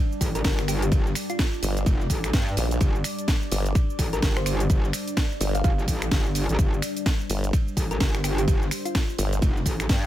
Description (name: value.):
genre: bass house.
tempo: 127 BPM.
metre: 4/4.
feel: swing 60% on 16ths.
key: unclear.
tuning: A4 = 440 Hz.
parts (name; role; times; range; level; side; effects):
deep dark ambient pad; sustained chords; 0.0-10.1 s; G3 to D5; -33 LUFS; equal; chorus, built-in reverb, sidechain pumping.
house drum kit; drums; 0.1-10.1 s; finger snaps, hi-hat, shaker, snare drum; -30 LUFS; right 1 dB; none.
metallic wobble bass; bass; 0.2-10.1 s; F1 to G2; -26 LUFS; equal; distortion, chorus, overdrive, sidechain pumping.
dusty soul sampler-style drum kit; drums; 0.2-10.0 s; hi-hat, ride cymbal, snare drum; -41 LUFS; right 3 dB; none.
electronic kick drum; drums; 0.2-10.0 s; none; -23 LUFS; equal; none.
thumb-piano-like synth pluck; melody; 0.4-9.3 s; F4 to F5; -34 LUFS; right 1 dB; chorus, phaser, cassette tape, ping-pong delay.
formant-sweep wobble bass; bass; 1.6-9.4 s; G1 to Bb1; -24 LUFS; equal; chorus, tube saturation, sidechain pumping.
room: little or no reverb.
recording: none.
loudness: -22 LUFS.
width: side -13 dB against mid.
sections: 0.0-10.1 A section.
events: none.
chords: 0.0 G5.